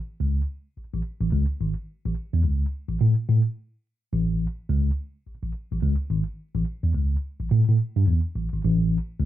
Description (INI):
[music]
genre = funk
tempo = 107 BPM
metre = 4/4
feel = swing 60% on 16ths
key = A major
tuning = A4 = 444 Hz
[part]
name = mellow tine electric piano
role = solo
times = 0.2-9.3 s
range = G#1 to A2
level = -22 LUFS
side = equal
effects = medium stereo tremolo
[sound]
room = light reverb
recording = dry, close 1970s-style studio recording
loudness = -22 LUFS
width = side -13 dB against mid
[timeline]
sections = 0.0-8.6 A section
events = none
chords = none